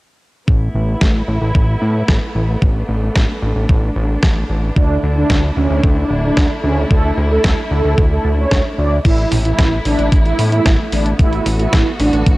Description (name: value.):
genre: italo disco.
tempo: 112 BPM.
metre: 4/4.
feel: straight.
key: unclear.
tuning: A4 = 438 Hz.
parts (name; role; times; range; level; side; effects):
dark symphonic string section; sustained chords; 0.5-12.4 s; A3 to F#4; -23 LUFS; equal; none.
fat analog bass; bass; 0.5-12.4 s; D1 to A2; -17 LUFS; equal; none.
electronic kick drum; drums; 0.5-12.4 s; none; -14 LUFS; equal; none.
detuned 8-bit digital drum machine; drums; 1.0-12.4 s; crash cymbal, hi-hat, snare drum, toms; -22 LUFS; equal; none.
mellow synth brass; melody; 4.8-12.3 s; C#4 to D5; -19 LUFS; right 2 dB; chorus, analog delay.
room: digital ambience.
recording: dry, gritty hardware recording, cassette tape.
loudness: -13 LUFS.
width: side -19 dB against mid.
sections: 0.5-9.1 A section; 9.1-12.4 B section.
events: none.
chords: 0.5 Asus2; 4.8 Dsus2; 9.1 Asus2.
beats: | 0.48 1.01 1.55 2.09 | 2.62 3.16 3.69 4.23 | 4.76 5.30 5.84 6.37 | 6.91 7.44 7.98 8.51 | 9.05 9.59 10.12 10.66 | 11.19 11.73 12.26.